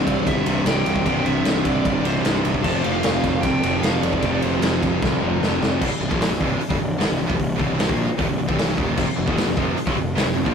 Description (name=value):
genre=hard rock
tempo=151 BPM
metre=4/4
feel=straight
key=unclear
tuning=A4 = 442 Hz
part: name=overdriven semi-hollow guitar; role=riff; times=0.0-5.8, 9.0-10.5 s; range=C2 to G3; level=-24 LUFS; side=equal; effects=none
part: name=tight distorted guitar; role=riff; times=0.0-10.5 s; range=C2 to Bb3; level=-26 LUFS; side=right 1 dB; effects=distortion
part: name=fuzz picked electric bass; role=bass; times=0.0-10.5 s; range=C1 to C2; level=-24 LUFS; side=equal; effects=overdrive
part: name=smooth overdriven lead guitar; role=melody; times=0.1-4.8 s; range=C5 to A5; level=-28 LUFS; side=right 1 dB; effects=none
part: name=raw garage drum kit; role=drums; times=0.1-10.5 s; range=crash cymbal, hi-hat, kick drum, ride cymbal, snare drum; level=-22 LUFS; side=equal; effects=none
room=moderate studio reverb, RT60 0.6 s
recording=rough rehearsal-room recording, tube saturation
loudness=-18 LUFS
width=side -6 dB against mid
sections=0.0-5.8 A section; 5.8-10.5 B section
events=drum fill 5.0-5.8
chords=0.0 C; 2.6 F5; 5.8 C5; 9.0 F5